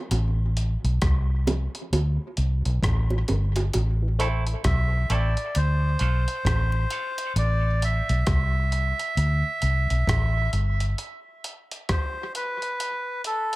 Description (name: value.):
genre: dub reggae.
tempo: 66 BPM.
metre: 4/4.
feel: swing 62% on 16ths.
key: unclear.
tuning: A4 = 440 Hz.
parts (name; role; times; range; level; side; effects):
vintage muted fingered electric bass; bass; 0.1-10.9 s; G1 to D2; -22 LUFS; equal; none.
dusty soul sampler-style drum kit; drums; 0.1-13.6 s; hi-hat, kick drum, rim click; -29 LUFS; equal; none.
bongos; percussion; 0.1-7.6 s; none; -31 LUFS; right 2 dB; high-pass filter on perc, tape echo.
mellow tonewheel organ; accompaniment; 4.0-7.2 s; D2 to F4; -38 LUFS; left 2 dB; overdrive, chorus vibrato, slow rotary speaker, high-pass filter, tape echo.
semi-hollow electric guitar; accompaniment; 4.2-7.2 s; A3 to A4; -33 LUFS; right 4 dB; high-pass filter, tape echo.
melodica; melody; 4.7-13.6 s; A4 to E5; -28 LUFS; right 1 dB; tape echo.
room: digital ambience.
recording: none.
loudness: -22 LUFS.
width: side -19 dB against mid.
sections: 0.0-13.6 A section.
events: break 0.0-3.7; part muted 7.4-13.6.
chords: 0.1 Am; 1.9 D5; 3.7 Am; 5.5 Dm; 7.4 Am; 9.2 D5; 11.0 N.C..